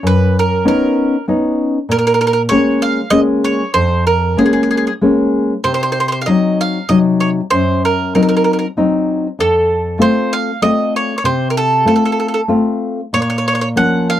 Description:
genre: italian folk.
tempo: 96 BPM.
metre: 3/4.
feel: swing 53% on 8ths, rubato.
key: Bb minor.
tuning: A4 = 440 Hz.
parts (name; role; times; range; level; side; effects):
bowl-back mandolin; melody; 0.0-14.2 s; Ab4 to Gb5; -16 LUFS; right 3 dB; none.
nylon-string guitar; accompaniment; 0.0-14.2 s; F2 to F4; -14 LUFS; left 2 dB; none.
room: moderate booth ambience, RT60 0.2 s.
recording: dry, close 1970s-style studio recording.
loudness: -12 LUFS.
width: side -11 dB against mid.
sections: 0.0-14.2 A section.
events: none.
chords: 0.0 Badd9; 1.9 Bbm7; 5.6 Cdim; 9.4 F; 13.1 Bbm.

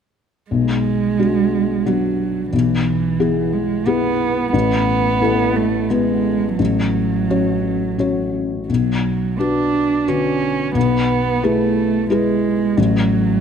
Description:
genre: neoclassical piano and strings.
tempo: 88 BPM.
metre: 3/4.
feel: rubato.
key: unclear.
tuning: A4 = 440 Hz.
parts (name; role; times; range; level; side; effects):
dark cello; second line; 0.5-13.4 s; E3 to D4; -19 LUFS; right 7 dB; none.
felt-muted upright piano; accompaniment; 0.5-13.4 s; A1 to C#5; -18 LUFS; left 4 dB; none.
room: moderate scoring stage reverb, RT60 2.2 s.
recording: close, detailed microphones.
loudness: -16 LUFS.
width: side -7 dB against mid.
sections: 0.5-13.4 A section.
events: none.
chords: 0.5 Bm; 2.5 E/B; 4.5 Asus2; 6.6 F#m/A; 8.7 Bm; 10.8 E/B; 12.8 N.C..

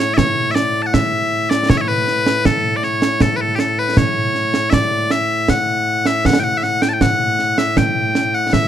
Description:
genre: scottish traditional, Scottish pipe music.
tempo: 79 BPM.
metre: 3/4.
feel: straight.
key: A mixolydian.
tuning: A4 = 440 Hz.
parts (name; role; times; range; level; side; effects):
loud bright bagpipes; melody; 0.0-8.7 s; A2 to A5; -16 LUFS; left 1 dB; plate reverb.
concert snare drum and concert bass drum; drums; 0.2-8.7 s; none; -17 LUFS; right 2 dB; none.
room: moderate studio reverb, RT60 0.6 s.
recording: dark, warm production.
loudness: -14 LUFS.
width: side -10 dB against mid.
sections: 0.0-8.7 A section.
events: none.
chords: none.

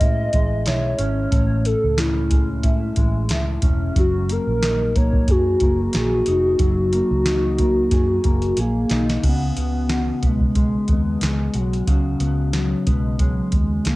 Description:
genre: indie pop, bedroom pop.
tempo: 91 BPM.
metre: 4/4.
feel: swing 55% on 16ths.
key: unclear.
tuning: A4 = 440 Hz.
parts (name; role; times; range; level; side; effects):
hollow clarinet-like synth lead; melody; 0.0-14.0 s; F#3 to D#5; -22 LUFS; equal; analog chorus, cassette tape, tape echo.
mellow electric guitar; accompaniment; 0.0-14.0 s; A2 to G#4; -25 LUFS; left 1 dB; lush chorus, vibrato effect, cassette tape.
vintage muted fingered electric bass; bass; 0.0-14.0 s; E1 to A2; -23 LUFS; equal; none.
soft vintage rhythm box; drums; 0.0-14.0 s; crash cymbal, hi-hat, kick drum, snare drum; -21 LUFS; equal; cassette tape.
room: digital ambience.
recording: home recording on cassette.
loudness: -17 LUFS.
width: side -19 dB against mid.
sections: 0.0-9.2 A section; 9.2-14.0 B section.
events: drum fill 8.6-9.2.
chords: 0.0 Amaj7; 4.0 F#69; 9.2 C#7sus4.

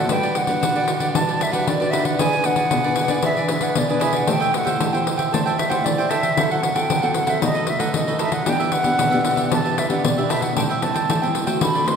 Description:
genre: samba and choro.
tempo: 115 BPM.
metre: 4/4.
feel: straight.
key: G major.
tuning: A4 = 440 Hz.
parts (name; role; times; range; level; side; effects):
concert flute; melody; 0.0-12.0 s; D5 to C6; -22 LUFS; right 1 dB; none.
cavaquinho; accompaniment; 0.0-11.9 s; D4 to G5; -26 LUFS; right 4 dB; none.
nylon-string guitar; accompaniment; 0.0-12.0 s; F#2 to C5; -24 LUFS; left 2 dB; none.
pandeiro; percussion; 0.1-12.0 s; none; -23 LUFS; left 2 dB; none.
room: wet scoring stage reverb, RT60 1.6 s.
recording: recorded in a church or concert hall.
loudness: -18 LUFS.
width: side -6 dB against mid.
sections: 0.1-12.0 A section.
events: none.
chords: 0.1 Gmaj7; 2.2 E7; 4.3 Am7; 6.4 F#m7b5; 7.4 B7; 8.5 Em7; 10.6 Am7.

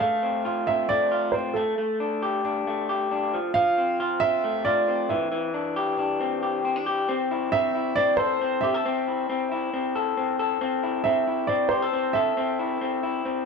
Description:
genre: indie pop.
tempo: 136 BPM.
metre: 4/4.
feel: straight.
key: A minor.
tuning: A4 = 439 Hz.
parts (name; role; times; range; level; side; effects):
dark upright piano; melody; 0.0-13.4 s; A4 to F5; -24 LUFS; right 3 dB; none.
electric guitar through a small old amp; arpeggios; 0.0-13.5 s; E3 to A4; -25 LUFS; left 3 dB; tape echo.
room: wet large studio reverb, RT60 0.9 s.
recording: dark, warm production.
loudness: -22 LUFS.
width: side -5 dB against mid.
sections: 0.0-7.1 A section; 7.1-13.5 B section.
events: none.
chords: 0.0 F; 1.6 Gsus2; 3.3 F; 5.1 Cadd9; 7.1 Am.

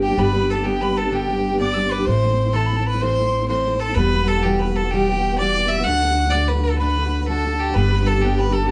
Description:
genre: celtic folk, Celtic slide.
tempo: 127 BPM (dotted quarters).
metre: 12/8.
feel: straight.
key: G major.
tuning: A4 = 441 Hz.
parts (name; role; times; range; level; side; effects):
rich fiddle; melody; 0.0-8.7 s; G4 to F#5; -25 LUFS; equal; plate reverb.
breathy mid whistle; second line; 0.0-8.7 s; G5 to F#6; -30 LUFS; equal; none.
fingerpicked steel-string acoustic guitar; accompaniment; 0.0-8.7 s; E2 to G4; -25 LUFS; equal; none.
upright bass; bass; 0.0-8.7 s; E1 to D2; -24 LUFS; equal; none.
room: moderate studio ambience, RT60 0.5 s.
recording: nothing above 10.7 kHz.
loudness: -20 LUFS.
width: mono.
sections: 0.2-8.7 A section.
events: none.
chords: 0.2 G; 2.1 Am; 4.0 Emadd9; 5.9 D; 7.8 G.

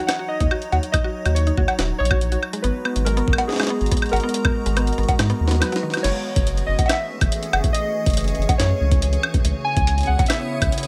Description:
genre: IDM.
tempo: 141 BPM.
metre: 4/4.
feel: straight.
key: unclear.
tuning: A4 = 440 Hz.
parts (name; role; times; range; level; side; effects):
warbly lo-fi synth keys; melody; 0.0-10.9 s; Ab4 to Ab5; -29 LUFS; equal; chorus, tape echo.
icy glass pad; sustained chords; 0.0-10.9 s; Db3 to Bb5; -32 LUFS; equal; chorus, built-in reverb.
mallet-like synth pluck; arpeggios; 0.0-5.9 s; Eb3 to Gb4; -31 LUFS; equal; chorus, tape echo.
jungle sampler-style drum kit; drums; 0.1-10.9 s; cowbell, crash cymbal, hi-hat, snare drum, woodblock; -27 LUFS; equal; none.
warm sub bass; bass; 0.4-10.7 s; Eb1 to Ab2; -24 LUFS; equal; tube saturation.
electronic kick drum; drums; 0.4-10.7 s; none; -23 LUFS; equal; none.
twinkling granular texture; texture; 6.5-10.9 s; Db4 to Eb6; -37 LUFS; equal; built-in reverb, sidechain pumping.
room: light reverb.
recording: none.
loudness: -20 LUFS.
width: mono.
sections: 0.0-6.0 A section; 6.0-10.9 B section.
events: drum fill 5.2-6.0.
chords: 0.0 Ebm7; 2.4 Abm9; 6.0 Gbm9; 9.2 Dbm9.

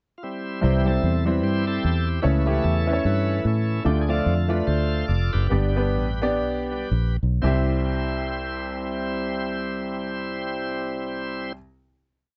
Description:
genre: uptempo gospel.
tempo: 112-149 BPM.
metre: 4/4.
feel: swing 59% on 8ths.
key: C major.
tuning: A4 = 440 Hz.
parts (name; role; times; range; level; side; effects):
bright tonewheel organ; sustained chords; 0.2-11.5 s; E3 to D5; -31 LUFS; equal; slow rotary speaker, overdrive.
clear baby grand piano; accompaniment; 0.6-11.6 s; C2 to E5; -28 LUFS; equal; none.
fingered electric bass; bass; 0.6-11.5 s; F1 to A2; -25 LUFS; equal; none.
room: little or no reverb.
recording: dark, warm production, nothing above 7.7 kHz.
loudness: -24 LUFS.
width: mono.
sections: 0.0-0.6 pickup bar; 0.6-7.4 breakdown; 7.4-11.7 final chord.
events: tonewheel organ solo 0.6-7.4; slowing down 3.9-7.4.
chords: 0.0 C; 2.2 A/C#; 3.9 Dm; 5.5 G; 7.4 C.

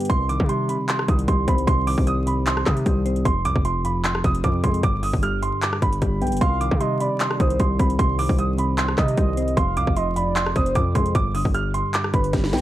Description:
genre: hip hop, trap.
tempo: 152 BPM.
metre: 4/4.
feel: half-time.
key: C harmonic minor.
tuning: A4 = 441 Hz.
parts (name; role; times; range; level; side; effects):
dark concert grand piano; melody; 0.0-12.6 s; G5 to F6; -26 LUFS; right 3 dB; none.
soft electric-piano-like synth keys; accompaniment; 0.0-12.6 s; F2 to C4; -25 LUFS; equal; chorus.
trap drum kit; drums; 0.0-12.6 s; handclaps, hi-hat, kick drum, rim click, snare drum; -23 LUFS; equal; overdrive.
distorted 808-style bass; bass; 0.1-12.6 s; F1 to C3; -24 LUFS; equal; distortion.
gliding portamento lead; second line; 6.4-12.3 s; B4 to F5; -28 LUFS; right 2 dB; chorus, tape echo.
room: digital ambience.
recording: vinyl crackle.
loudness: -19 LUFS.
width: side -14 dB against mid.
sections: 0.1-12.6 A section.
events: drum fill 12.3.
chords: 0.1 Cm; 3.3 Fm; 4.8 G; 6.4 Cm; 9.6 Fm; 11.1 G.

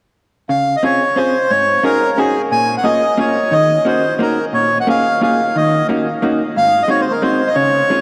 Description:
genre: musette waltz.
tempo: 178 BPM.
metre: 3/4.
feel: swing 55% on 8ths.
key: Db major.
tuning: A4 = 440 Hz.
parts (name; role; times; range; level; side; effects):
accordion; melody; 0.5-8.0 s; Ab4 to Ab5; -16 LUFS; equal; none.
vintage hollow-body jazz guitar; accompaniment; 0.5-8.0 s; Ab2 to Ab4; -20 LUFS; equal; none.
room: wet huge ambient reverb, RT60 7.8 s.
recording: in a vast, echoing space.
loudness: -15 LUFS.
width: mono.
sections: 0.5-8.0 A section.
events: none.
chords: 0.5 Dbmaj7; 1.5 Ab7sus4; 2.5 Bbm7; 3.5 Ebm7; 4.5 Bbm7; 5.6 Ebm7; 6.6 Ab7.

